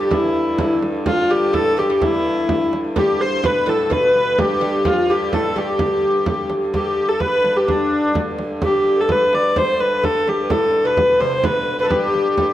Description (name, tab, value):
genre	medieval dance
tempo	127 BPM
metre	2/4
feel	straight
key	G mixolydian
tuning	A4 = 443 Hz
part	warm hurdy-gurdy	melody	0.0-12.5 s	D4 to D5	-17 LUFS	equal	none
part	lute	second line	0.0-6.5, 10.5-12.5 s	E2 to C3	-27 LUFS	right 4 dB	none
part	mellow hollow tenor recorder	second line	0.0-12.5 s	D4 to C5	-24 LUFS	left 3 dB	none
part	warm hurdy-gurdy	drone	0.0-12.5 s	G2 to D3	-27 LUFS	equal	none
part	frame drum	percussion	0.1-12.5 s	none	-25 LUFS	right 2 dB	none
room	wet recital hall reverb, RT60 1.5 s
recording	none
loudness	-15 LUFS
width	side -13 dB against mid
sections	0.0-6.7 A section; 6.7-12.5 B section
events	none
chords	none